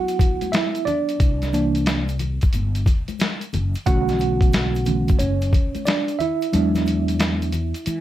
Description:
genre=hip hop, jazz-hop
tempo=90 BPM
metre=4/4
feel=swing 65% on 16ths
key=unclear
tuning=A4 = 439 Hz
part: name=mellow tine electric piano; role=accompaniment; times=0.0-8.0 s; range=D3 to F#5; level=-22 LUFS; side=right 3 dB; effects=medium stereo tremolo, plate reverb
part: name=trip hop sampler-style drum kit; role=drums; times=0.1-8.0 s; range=hi-hat, kick drum, snare drum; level=-21 LUFS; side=left 1 dB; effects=none
part: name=egg shaker and congas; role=percussion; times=0.1-8.0 s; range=none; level=-34 LUFS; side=left 8 dB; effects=none
part: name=fretless electric bass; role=bass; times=1.2-8.0 s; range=F#1 to E3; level=-23 LUFS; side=left 1 dB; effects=ensemble chorus
room=light reverb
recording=none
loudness=-18 LUFS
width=side -13 dB against mid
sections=0.0-8.0 A section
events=break 0.0-1.2; tine electric piano solo 0.0-8.0; kick muted 6.5-8.0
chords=0.0 D6; 1.2 C9; 3.9 Bm11; 6.5 E7

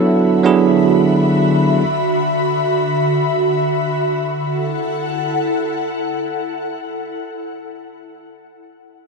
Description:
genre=amapiano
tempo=free time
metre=none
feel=none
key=F# minor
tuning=A4 = 440 Hz
part: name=bell-like tine electric piano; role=accompaniment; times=0.0-1.8 s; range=F#3 to A4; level=-13 LUFS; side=moving between left 3 dB and right 6 dB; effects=auto-pan
part: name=ethereal airy pad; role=sustained chords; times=0.0-7.0 s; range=D3 to B5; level=-18 LUFS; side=equal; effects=ensemble chorus, built-in reverb
room=light reverb, digital ambience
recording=dry, gritty hardware recording, transformer saturation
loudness=-15 LUFS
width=side -4 dB against mid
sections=0.0-4.0 A section; 4.0-6.2 B section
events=drop 0.0-4.0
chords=0.0 D69; 4.0 F#m7

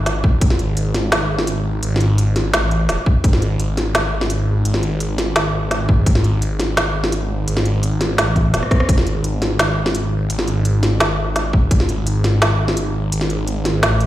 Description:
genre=half-time drum and bass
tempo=170 BPM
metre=4/4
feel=half-time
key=unclear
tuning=A4 = 436 Hz
part: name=phased detuned saw bass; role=bass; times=0.0-14.1 s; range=D#1 to A1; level=-18 LUFS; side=equal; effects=phaser
part: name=organic electronic drum kit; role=drums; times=0.1-14.1 s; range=hi-hat, rim click, snare drum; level=-20 LUFS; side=equal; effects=overdrive
part: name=electronic kick drum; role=drums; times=0.2-0.5, 3.1-3.3, 5.9-6.1, 8.4-9.0, 11.5-11.8 s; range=none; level=-14 LUFS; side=equal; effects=none
room=light reverb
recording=played on a big sound system in a bare room, large studio reverb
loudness=-15 LUFS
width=side -14 dB against mid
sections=0.0-14.1 A section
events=drum fill 8.6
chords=none

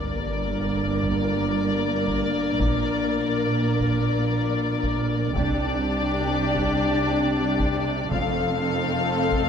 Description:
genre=cinematic, epic orchestral film score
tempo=87 BPM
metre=4/4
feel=straight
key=G minor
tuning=A4 = 442 Hz
part: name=warm studio violin section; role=melody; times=0.0-9.5 s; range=D5 to F5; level=-28 LUFS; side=left 6 dB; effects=none
part: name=dark symphonic violin section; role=second line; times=0.0-9.5 s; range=G4 to Bb4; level=-32 LUFS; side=left 3 dB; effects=none
part: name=warm studio viola section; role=accompaniment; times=0.0-9.5 s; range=Bb3 to D4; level=-31 LUFS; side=right 2 dB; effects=none
part: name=dark French horn section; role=sustained chords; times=0.0-9.5 s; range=G3 to D4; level=-28 LUFS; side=left 3 dB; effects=none
part: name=rich symphonic double bass section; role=bass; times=0.0-9.5 s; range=F1 to C2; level=-30 LUFS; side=right 3 dB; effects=none
part: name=warm symphonic cello section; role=bass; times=0.0-9.5 s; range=F2 to C3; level=-28 LUFS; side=right 3 dB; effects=none
part: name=sub drop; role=sound effects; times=0.0-2.6 s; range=none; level=-37 LUFS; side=left 1 dB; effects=none
part: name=taiko ensemble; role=drums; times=1.0-9.5 s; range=none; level=-30 LUFS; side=equal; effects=none
room=wet concert hall reverb, RT60 2.2 s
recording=none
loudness=-21 LUFS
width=side -7 dB against mid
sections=0.0-9.5 A section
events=impact 0.0-2.6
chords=0.0 Gm; 2.6 Bb; 5.3 Csus2; 8.1 F

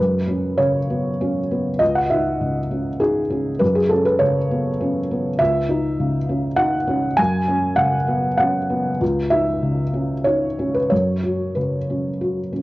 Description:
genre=neoclassical minimalist piano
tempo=99 BPM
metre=3/4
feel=rubato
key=unclear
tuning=A4 = 440 Hz
part: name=felt-muted upright piano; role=solo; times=0.0-12.6 s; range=C#2 to G#5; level=-18 LUFS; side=equal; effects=cassette tape
room=light reverb, studio ambience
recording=home recording on cassette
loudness=-18 LUFS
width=side -18 dB against mid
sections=0.0-12.6 A section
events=none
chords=0.0 F#sus4; 1.8 C#madd9; 3.6 F#sus4; 5.4 C#madd9; 7.2 F#sus4; 9.0 C#madd9; 10.9 F#sus4

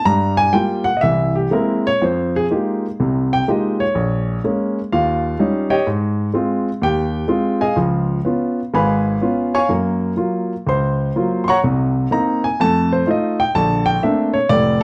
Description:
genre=solo jazz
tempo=125 BPM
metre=4/4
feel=swing 67% on 8ths, rubato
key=F minor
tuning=A4 = 440 Hz
part: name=warm grand piano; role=solo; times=0.0-14.8 s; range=F1 to Db6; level=-18 LUFS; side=equal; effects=none
room=moderate large studio reverb, RT60 0.9 s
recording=dark, warm production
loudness=-18 LUFS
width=mono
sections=0.0-2.0 A section; 2.0-14.8 A section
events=grand piano solo 0.0-14.8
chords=0.1 Gm7; 1.0 C7b13; 2.0 Fm11; 4.0 Bbm7; 4.9 Eb7; 5.9 Ab6; 7.8 Db7; 9.7 Gbmaj7; 11.6 Cm7; 12.6 F7; 13.5 Bbmaj9

